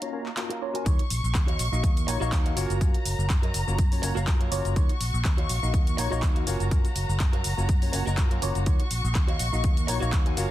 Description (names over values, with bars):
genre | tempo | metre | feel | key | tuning
filtered disco house | 123 BPM | 4/4 | swing 54% on 16ths | Eb minor | A4 = 440 Hz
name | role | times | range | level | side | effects
tine electric piano | accompaniment | 0.0-10.5 s | Bb3 to F5 | -32 LUFS | left 1 dB | medium stereo tremolo, phaser, sidechain pumping, low-pass filter
dark studio violin section | sustained chords | 0.0-10.5 s | Eb4 to Db6 | -35 LUFS | left 2 dB | sidechain pumping, low-pass filter
house drum kit | drums | 0.0-10.5 s | handclaps, hi-hat, shaker | -34 LUFS | equal | overdrive, sidechain pumping on hats, sidechain pumping on perc
direct-recorded clean electric guitar | riff | 0.5-10.5 s | Gb4 to Ab5 | -37 LUFS | right 4 dB | lush chorus, sidechain pumping, low-pass filter
fingered electric bass | bass | 0.9-10.5 s | Gb1 to Gb2 | -28 LUFS | equal | sidechain pumping, low-pass filter
electronic kick drum | drums | 0.9-10.2 s | none | -24 LUFS | equal | overdrive
room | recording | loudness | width
little or no reverb | dense, heavily limited modern master | -23 LUFS | side -14 dB against mid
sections
0.9-10.5 A section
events
drop 0.9-10.5; clean electric guitar fill 7.7-8.7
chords
0.0 Ebm9; 2.6 Gbmaj7; 4.8 Ebm9; 6.5 Gbmaj7; 8.7 Ebm9